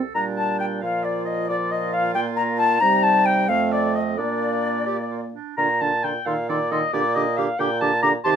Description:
quick classical-period movement for wind quintet; 90 BPM (dotted quarters); 6/8; rubato; Bb major; A4 = 440 Hz
bright clarinet; accompaniment; 0.0-8.3 s; C4 to A4; -30 LUFS; right 11 dB
warm bassoon; bass; 0.0-8.4 s; F2 to C3; -27 LUFS; right 4 dB
warm oboe; second line; 0.1-8.4 s; D5 to Bb5; -24 LUFS; left 1 dB
mellow hollow silver concert flute; melody; 0.2-8.3 s; D5 to D6; -23 LUFS; left 6 dB
mellow French horn; accompaniment; 0.2-8.4 s; D3 to Bb3; -27 LUFS; right 3 dB
light reverb; minimal, uncompressed stereo recording; -19 LUFS; side -8 dB against mid
0.0-5.6 A section; 5.6-8.4 A section
0.2 Bb; 0.8 Bbadd11; 2.8 Cm; 3.5 F; 4.2 Bb; 6.3 Cm13/Bb (rootless); 6.9 Gm/Bb

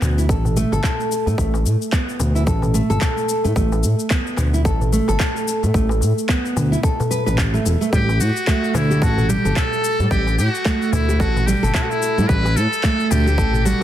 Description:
organic downtempo; 110 BPM; 4/4; swing 58% on 16ths; A4 = 440 Hz
nylon-string guitar; arpeggios; 0.0-13.8 s; G3 to B4; -22 LUFS; right 2 dB; tape echo
smooth gliding synth bass; bass; 0.0-13.7 s; E1 to A2; -18 LUFS; equal
electronic handclaps and cabasa; drums; 0.0-13.8 s; -28 LUFS; left 2 dB; overdrive
darbuka; percussion; 0.0-13.8 s; -27 LUFS; left 3 dB
electronic kick drum; drums; 0.3-13.5 s; -22 LUFS; equal; overdrive
trumpet with metal mute; melody; 7.9-13.8 s; E4 to B4; -23 LUFS; left 1 dB; vintage 12-bit sampler grit, tape echo
light reverb; dense, heavily limited modern master; -16 LUFS; side -12 dB against mid
0.0-13.8 A section
0.0 Asus2; 7.9 Gsus2

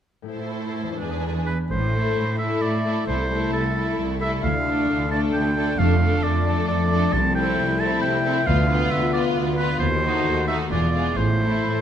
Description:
classical; 133 BPM; 3/4; straight; A minor; A4 = 440 Hz
concert harp; arpeggios; 0.2-11.8 s; E2 to A5; -29 LUFS; left 9 dB
rich symphonic violin section; melody; 0.3-11.8 s; G#4 to C5; -32 LUFS; left 2 dB
warm symphonic violin section; second line; 0.3-11.8 s; D4 to A4; -30 LUFS; left 1 dB
clear symphonic viola section; accompaniment; 0.3-11.8 s; A3 to E4; -31 LUFS; right 1 dB
rich symphonic cello section; bass; 0.3-11.8 s; C2 to A2; -26 LUFS; right 2 dB
bright oboe; second line; 1.5-11.8 s; A4 to A5; -26 LUFS; right 2 dB
mellow French horn section; sustained chords; 1.7-11.8 s; G#3 to F#4; -29 LUFS; left 2 dB
rich symphonic double bass section; bass; 1.7-11.6 s; E1 to D#2; -25 LUFS; right 2 dB
light reverb; close, detailed microphones; -20 LUFS; side -9 dB against mid
0.3-1.7 A section; 1.7-11.8 B section
0.3 Am; 1.0 E7; 1.7 Am; 3.1 Am/C; 4.4 Dm; 5.8 Dm/F; 7.1 Am/C; 8.5 Bdim/D; 9.8 D#dim7; 10.7 E7b9; 11.2 Am

